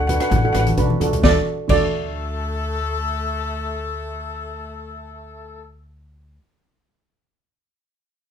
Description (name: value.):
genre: calypso.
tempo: 131 BPM.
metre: 4/4.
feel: straight.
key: D major.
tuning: A4 = 440 Hz.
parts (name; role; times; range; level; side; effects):
steel pan; melody; 0.0-6.4 s; D5 to F#5; -22 LUFS; right 4 dB; none.
upright bass; bass; 0.0-6.4 s; A1 to D2; -25 LUFS; left 1 dB; none.
steel pan; accompaniment; 0.1-6.4 s; D4 to B4; -23 LUFS; right 3 dB; none.
street-band drum kit; drums; 0.1-1.8 s; crash cymbal, hi-hat, kick drum, rim click, snare drum; -22 LUFS; left 1 dB; none.
congas; percussion; 0.1-1.8 s; none; -25 LUFS; left 2 dB; none.
brilliant horn section; second line; 1.2-5.7 s; A3 to A4; -28 LUFS; left 5 dB; none.
room: moderate studio reverb, RT60 0.6 s.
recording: minimal, uncompressed stereo recording.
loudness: -18 LUFS.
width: side -8 dB against mid.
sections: 0.0-1.2 A section; 1.2-4.9 B section.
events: drum fill 0.9-1.2.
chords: 0.0 D.